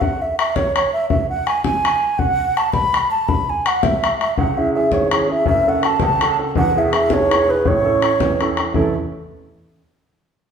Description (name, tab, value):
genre	celtic folk, Celtic jig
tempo	110 BPM (dotted quarters)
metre	6/8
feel	straight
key	A major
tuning	A4 = 441 Hz
part	baroque flute	melody	0.0-8.9 s	A4 to B5	-18 LUFS	right 2 dB	none
part	bodhran	percussion	0.0-8.9 s	none	-20 LUFS	left 4 dB	none
part	warm upright piano	accompaniment	4.4-8.9 s	E1 to A4	-20 LUFS	right 2 dB	none
room	wet large studio reverb, RT60 1.2 s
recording	band playing live in one room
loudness	-15 LUFS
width	side -7 dB against mid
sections	0.0-8.7 A section; 8.7-9.8 B section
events	none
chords	0.0 N.C.; 4.4 C#m; 5.5 F#m; 6.6 E; 7.7 A